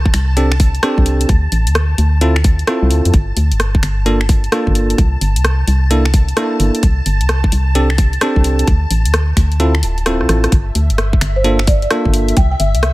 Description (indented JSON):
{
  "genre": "UK garage, two-step garage",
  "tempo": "130 BPM",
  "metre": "4/4",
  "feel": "swing 64% on 16ths",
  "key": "G dorian",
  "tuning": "A4 = 441 Hz",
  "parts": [
    { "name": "soft string machine", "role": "sustained chords", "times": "0.0-12.9 s", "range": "E5 to A5", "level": "-27 LUFS", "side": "equal", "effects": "phaser, ensemble chorus, sidechain pumping" },
    { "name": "organ-like FM bass", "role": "bass", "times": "0.0-12.9 s", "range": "D1 to F2", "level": "-14 LUFS", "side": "equal", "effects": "none" },
    { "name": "electronic kick drum", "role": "drums", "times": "0.1-12.5 s", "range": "none", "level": "-13 LUFS", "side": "equal", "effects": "none" },
    { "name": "garage drum kit", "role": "drums", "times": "0.1-12.9 s", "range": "finger snaps, hi-hat, rim click", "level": "-20 LUFS", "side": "equal", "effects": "none" },
    { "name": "bell-like tine electric piano", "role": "stabs", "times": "0.4-12.4 s", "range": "Bb3 to A4", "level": "-18 LUFS", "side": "right 1 dB", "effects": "tape echo" },
    { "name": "buzzing marimba with soft mallets", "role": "melody", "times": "11.4-12.8 s", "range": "C5 to G5", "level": "-20 LUFS", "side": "equal", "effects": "tape echo" }
  ],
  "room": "digital ambience",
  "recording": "none",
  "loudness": "-12 LUFS",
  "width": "side -19 dB against mid",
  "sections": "0.0-12.9 A section",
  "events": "kick drops out 9.6-10.5; drum fill 10.2-10.5",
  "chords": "0.0 Gsus24; 1.3 Dm7; 3.1 Gm7; 5.0 C13; 6.8 Gsus24; 8.7 Dm7; 10.5 Gm7; 12.4 C"
}